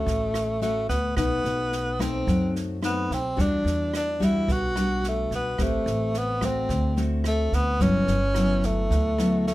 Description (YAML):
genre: bossa nova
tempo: 108 BPM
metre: 4/4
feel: straight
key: D major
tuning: A4 = 440 Hz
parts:
  - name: breathy tenor saxophone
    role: melody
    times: 0.0-9.5 s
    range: A3 to F#4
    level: -26 LUFS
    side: equal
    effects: none
  - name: nylon-string guitar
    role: accompaniment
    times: 0.0-9.5 s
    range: G2 to B4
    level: -27 LUFS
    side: left 2 dB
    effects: none
  - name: upright bass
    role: bass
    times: 0.1-9.5 s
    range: G1 to F#2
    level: -28 LUFS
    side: equal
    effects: none
  - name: open jazz drum kit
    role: drums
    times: 0.1-9.5 s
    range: kick drum, rim click, snare drum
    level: -32 LUFS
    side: right 1 dB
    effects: none
room: light reverb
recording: none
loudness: -22 LUFS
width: side -16 dB against mid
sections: 0.0-9.5 A section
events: none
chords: 0.0 Dmaj7; 1.2 B7b9; 3.4 Em9; 5.6 Am9; 6.7 D7; 7.8 Gmaj13